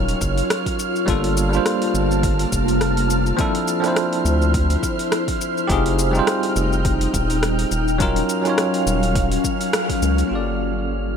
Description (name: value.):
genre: sunset chillout.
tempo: 104 BPM.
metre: 4/4.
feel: swing 56% on 16ths.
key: G minor.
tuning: A4 = 440 Hz.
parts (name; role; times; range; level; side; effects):
bell-like tine electric piano; accompaniment; 0.0-11.2 s; F3 to D5; -23 LUFS; moving between left 4 dB and right 3 dB; fast stereo tremolo, auto-pan, tape echo.
ethereal airy pad; sustained chords; 0.0-11.2 s; Gb3 to A5; -24 LUFS; left 1 dB; ensemble chorus, built-in reverb.
round analog bass; bass; 0.0-11.2 s; Eb1 to D2; -21 LUFS; equal; none.
wind-like tuned noise texture; texture; 0.0-11.2 s; F6; -29 LUFS; right 6 dB; built-in reverb.
deep house drum kit; drums; 0.1-10.3 s; hi-hat, rim click, shaker; -26 LUFS; left 1 dB; overdrive.
electronic kick drum; drums; 0.2-10.0 s; none; -24 LUFS; equal; overdrive.
room: light reverb.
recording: none.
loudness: -17 LUFS.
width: side -7 dB against mid.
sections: 0.0-10.3 A section.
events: band accent 9.7.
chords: 0.0 Ebm9; 1.1 Gm9; 3.4 Dm9; 5.7 Fm9; 7.7 Ebm9; 10.3 Gm9.